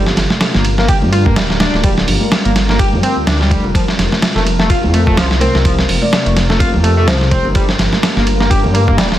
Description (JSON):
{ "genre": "breakbeat, breaks", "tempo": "126 BPM", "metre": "4/4", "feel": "swing 57% on 16ths", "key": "G minor", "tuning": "A4 = 440 Hz", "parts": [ { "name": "warbly tape-like pad", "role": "sustained chords", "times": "0.0-9.2 s", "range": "C3 to Bb4", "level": "-22 LUFS", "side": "left 1 dB", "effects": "chorus, built-in reverb, vintage 12-bit sampler grit, sidechain pumping" }, { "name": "dark detuned saw bass", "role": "bass", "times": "0.0-9.2 s", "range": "D1 to G2", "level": "-15 LUFS", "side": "equal", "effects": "none" }, { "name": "dusty soul sampler-style drum kit", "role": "drums", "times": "0.1-9.2 s", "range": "hi-hat, kick drum, ride cymbal, snare drum", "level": "-15 LUFS", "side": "equal", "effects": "studio reverb" }, { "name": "congas and bongos", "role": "percussion", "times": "0.2-8.7 s", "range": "none", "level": "-23 LUFS", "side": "right 2 dB", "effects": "none" }, { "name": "overdriven synth lead", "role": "riff", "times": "0.5-9.0 s", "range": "F3 to G4", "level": "-18 LUFS", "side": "equal", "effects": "tube saturation, lush chorus, cassette tape, digital delay" }, { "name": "marimba with medium mallets", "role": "melody", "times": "5.4-7.6 s", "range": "Bb4 to D5", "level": "-24 LUFS", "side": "left 1 dB", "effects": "small speaker sound, digital delay" } ], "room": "light reverb", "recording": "dense, heavily limited modern master, vinyl crackle", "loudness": "-11 LUFS", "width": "side -13 dB against mid", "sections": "0.0-9.2 A section", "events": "none", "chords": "0.0 Gm7; 3.7 Fsus4; 7.6 Gm7", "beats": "0.41 0.89 1.36 | 1.84 2.32 2.79 3.27 | 3.75 4.22 4.70 5.17 | 5.65 6.13 6.60 7.08 | 7.56 8.03 8.51 8.98" }